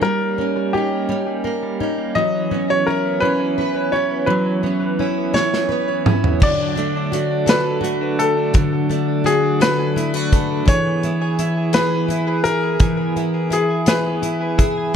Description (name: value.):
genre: six-eight pop ballad.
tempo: 56 BPM (dotted quarters).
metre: 6/8.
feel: straight.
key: unclear.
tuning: A4 = 440 Hz.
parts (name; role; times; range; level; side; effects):
bright grand piano; melody; 0.0-15.0 s; G4 to D#5; -22 LUFS; left 2 dB; digital delay.
fingerpicked plugged-in steel-string acoustic guitar; accompaniment; 0.0-15.0 s; D3 to B4; -20 LUFS; left 1 dB; double-tracked left and right.
direct-recorded clean electric guitar; arpeggios; 0.0-15.0 s; E3 to G#4; -26 LUFS; right 6 dB; tremolo.
modern studio drum kit; drums; 5.4-14.8 s; crash cymbal, hi-hat, kick drum, snare drum, toms; -18 LUFS; equal; none.
room: light reverb, studio ambience.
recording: none.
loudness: -16 LUFS.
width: side -8 dB against mid.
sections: 0.0-6.4 A section; 6.4-15.0 B section.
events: drum fill 5.3-6.4.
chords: 0.0 D#7/G; 2.2 F#7sus4; 6.4 D; 10.7 E.